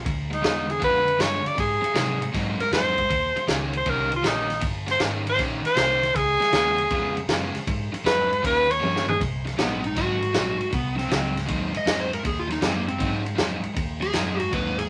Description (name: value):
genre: electric blues shuffle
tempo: 158 BPM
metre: 4/4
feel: swing 68% on 8ths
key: Ab mixolydian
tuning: A4 = 438 Hz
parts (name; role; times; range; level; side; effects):
- clear tenor saxophone; second line; 0.0-9.2 s; Eb4 to D5; -24 LUFS; equal; none
- vintage muted fingered electric bass; bass; 0.0-14.9 s; G1 to C3; -34 LUFS; equal; none
- overdriven semi-hollow guitar; riff; 0.1-14.8 s; Ab2 to G4; -32 LUFS; equal; none
- vintage drum kit; drums; 0.1-14.8 s; kick drum, ride cymbal, snare drum, toms; -30 LUFS; equal; none
- overdriven slide guitar; melody; 9.6-14.9 s; Bb3 to Eb5; -30 LUFS; equal; none
room: moderate studio ambience, RT60 0.5 s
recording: none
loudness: -24 LUFS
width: mono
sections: 0.0-9.2 A section; 9.2-14.9 A section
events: tenor saxophone solo 0.0-9.2; drum fill 8.8-9.2; electric slide guitar solo 9.2-14.9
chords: 0.1 Ddim7; 1.6 Ab7; 3.1 Eb7; 6.2 Db7; 7.7 Ab7; 8.4 Eb7; 9.2 Ab7